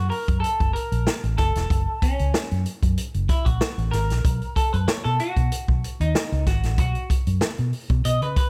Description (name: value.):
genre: funk.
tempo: 95 BPM.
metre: 4/4.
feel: straight.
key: F# mixolydian.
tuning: A4 = 442 Hz.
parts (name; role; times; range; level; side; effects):
semi-hollow electric guitar; accompaniment; 0.0-8.5 s; C#4 to D#5; -30 LUFS; equal; subtle chorus.
vintage muted fingered electric bass; bass; 0.0-8.3 s; E1 to C#3; -26 LUFS; equal; none.
swinging big-band drum kit; drums; 0.1-8.5 s; hi-hat, kick drum, snare drum; -26 LUFS; equal; none.
room: studio reverb.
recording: none.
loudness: -23 LUFS.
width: mono.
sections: 0.0-8.5 A section.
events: clean electric guitar solo 0.0-8.5.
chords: 0.0 F#; 4.2 B.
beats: 0.43 1.07 | 1.71 2.34 2.97 3.61 | 4.24 4.88 5.51 6.14 | 6.78 7.41 8.04.